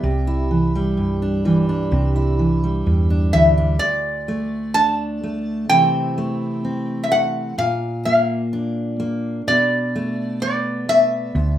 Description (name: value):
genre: acoustic folk duo or small band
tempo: 64 BPM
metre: 4/4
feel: straight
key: unclear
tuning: A4 = 441 Hz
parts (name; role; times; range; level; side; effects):
- metal-body resonator slide guitar; melody; 0.0-11.6 s; D5 to A5; -18 LUFS; equal; none
- fingerpicked steel-string acoustic guitar; accompaniment; 0.0-11.6 s; D2 to E4; -21 LUFS; right 1 dB; none
- hollow-body short-scale fingered electric bass; bass; 0.0-3.8, 11.3-11.6 s; C2 to E2; -20 LUFS; right 1 dB; none
room: wet studio reverb, RT60 0.6 s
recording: rough home demo mix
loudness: -17 LUFS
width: side -11 dB against mid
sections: 0.0-3.8 A section; 3.8-11.6 B section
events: none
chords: 0.0 Cadd9; 3.8 D5; 5.7 C6; 7.6 Bb; 9.5 Bm7